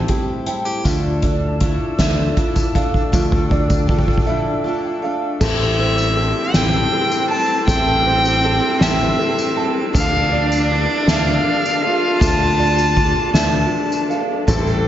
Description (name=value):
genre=indie folk with a building arrangement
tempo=53 BPM (dotted quarters)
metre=6/8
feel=straight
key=D minor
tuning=A4 = 440 Hz
part: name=fingerpicked steel-string acoustic guitar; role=accompaniment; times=0.0-0.9 s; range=A2 to G4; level=-28 LUFS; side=equal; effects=slapback echo
part: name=picked twelve-string acoustic guitar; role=accompaniment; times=0.0-14.9 s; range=A2 to A4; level=-24 LUFS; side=left 4 dB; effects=slapback echo
part: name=dark upright piano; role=arpeggios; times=0.0-14.9 s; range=F4 to A5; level=-25 LUFS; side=right 4 dB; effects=slapback echo, analog delay
part: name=soft-mallet drum kit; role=drums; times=0.1-14.9 s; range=crash cymbal, hi-hat, kick drum, ride cymbal, snare drum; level=-20 LUFS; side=equal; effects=none
part: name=breathy bright flute section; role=sustained chords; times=0.8-14.9 s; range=D4 to E6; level=-30 LUFS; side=left 1 dB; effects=none
part: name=fingered electric bass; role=bass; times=0.8-14.9 s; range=A1 to D2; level=-21 LUFS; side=equal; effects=none
part: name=tambourine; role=percussion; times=0.9-14.8 s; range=none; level=-33 LUFS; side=left 4 dB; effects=none
part: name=warm fiddle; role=melody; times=5.4-14.1 s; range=E5 to A5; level=-20 LUFS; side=left 1 dB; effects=slapback echo, analog delay
part: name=warm cello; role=second line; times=5.4-14.9 s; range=C4 to A4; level=-23 LUFS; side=right 3 dB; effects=slapback echo, analog delay
part: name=felt-muted upright piano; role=accompaniment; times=5.4-14.9 s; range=A1 to E5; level=-30 LUFS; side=left 2 dB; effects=none
room=moderate recital hall reverb, RT60 1.7 s, studio ambience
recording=big arena sound, nothing above 7.6 kHz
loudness=-15 LUFS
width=side -11 dB against mid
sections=0.0-5.4 A section; 5.4-14.9 B section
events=build-up 0.0-5.4; drum fill 0.0-4.3; break 4.3-5.4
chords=0.0 Am7; 0.9 Dmadd9; 5.4 Am7; 9.9 Dmadd9